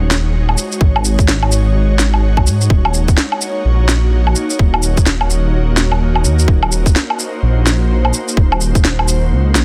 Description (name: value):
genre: future garage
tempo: 127 BPM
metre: 4/4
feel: swing 61% on 16ths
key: Eb dorian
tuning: A4 = 440 Hz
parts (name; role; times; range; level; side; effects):
- ethereal airy pad; sustained chords; 0.0-9.6 s; Ab3 to Db5; -24 LUFS; equal; ensemble chorus, built-in reverb, sidechain pumping
- dark detuned saw bass; bass; 0.0-9.6 s; Eb1 to Ab2; -16 LUFS; equal; sidechain pumping
- electronic snare drum, shaker and woodblock; drums; 0.1-9.6 s; none; -20 LUFS; equal; none
- electronic kick drum; drums; 0.8-8.8 s; none; -14 LUFS; equal; none
room: little or no reverb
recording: dense, heavily limited modern master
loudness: -14 LUFS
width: mono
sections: 0.0-9.6 A section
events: none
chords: 0.0 Ab7sus4; 2.7 Ebm7